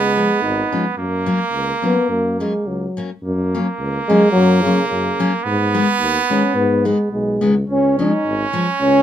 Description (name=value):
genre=alpine folk, alpine dance band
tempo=108 BPM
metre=2/4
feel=swing 54% on 8ths, rubato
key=F# major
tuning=A4 = 440 Hz
part: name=mellow euphonium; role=melody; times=0.0-9.0 s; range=C#3 to D#4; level=-17 LUFS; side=equal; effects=none
part: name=clear trumpet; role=second line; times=0.0-9.0 s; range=A#3 to C#4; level=-21 LUFS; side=right 5 dB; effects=none
part: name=mellow tuba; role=bass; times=0.0-9.0 s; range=G#1 to G#2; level=-23 LUFS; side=equal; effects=none
part: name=picked steel-string acoustic guitar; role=accompaniment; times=0.2-8.7 s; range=D#3 to C#4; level=-19 LUFS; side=left 3 dB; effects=none
room=moderate studio ambience, RT60 0.5 s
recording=minimal, uncompressed stereo recording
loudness=-15 LUFS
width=side -10 dB against mid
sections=0.0-3.2 A section; 3.2-9.0 A section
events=none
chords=0.0 C#; 1.0 F#; 5.5 G#m; 7.7 C#add9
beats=0.43 | 0.98 1.53 | 2.09 2.66 | 3.23 3.79 | 4.35 4.91 | 5.46 6.00 | 6.55 7.12 | 7.68 8.25 | 8.81